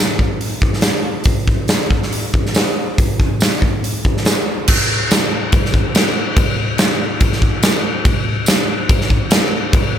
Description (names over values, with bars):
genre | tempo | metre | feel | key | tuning
rock | 142 BPM | 4/4 | straight | none | none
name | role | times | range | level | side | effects
big rock drum kit | drums | 0.2-9.8 s | crash cymbal, hi-hat, kick drum, snare drum | -14 LUFS | equal | none
tambourine | percussion | 0.8-9.4 s | none | -27 LUFS | right 4 dB | none
room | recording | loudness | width
light reverb, small room ambience | none | -14 LUFS | side -9 dB against mid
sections
0.0-4.7 A section; 4.7-10.0 B section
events
none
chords
none